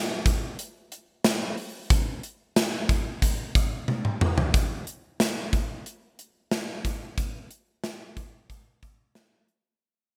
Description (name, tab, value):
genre	pop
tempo	91 BPM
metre	4/4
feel	straight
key	none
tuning	none
part	gated 80s drum kit	drums	0.3-9.6 s	hi-hat, kick drum, snare drum, tambourine, toms	-27 LUFS	equal	gated reverb
room	light reverb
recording	bright 1980s-style digital production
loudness	-27 LUFS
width	mono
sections	0.0-4.5 A section; 4.5-9.8 B section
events	drum fill 3.9-4.5; fade-out 4.5-9.8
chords	none